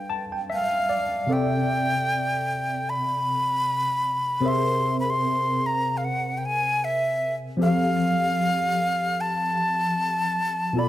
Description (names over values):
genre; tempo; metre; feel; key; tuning
soul; 76 BPM; 4/4; swing 54% on 16ths; C major; A4 = 440 Hz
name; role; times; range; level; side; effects
breathy jazz flute; melody; 0.0-10.9 s; E5 to C6; -24 LUFS; equal; none
tine electric piano; accompaniment; 0.0-10.9 s; B2 to A5; -26 LUFS; left 1 dB; phaser
room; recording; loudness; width
light reverb, small room ambience; none; -22 LUFS; side -14 dB against mid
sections
0.0-1.3 A section; 1.3-10.9 B section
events
tine electric piano fill 0.0-1.3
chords
0.0 G7; 1.3 C69; 4.4 Caug7; 7.6 Fadd9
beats
0.50 | 1.29 2.08 2.87 3.65 | 4.44 5.23 6.02 6.81 | 7.60 8.39 9.18 9.97 | 10.76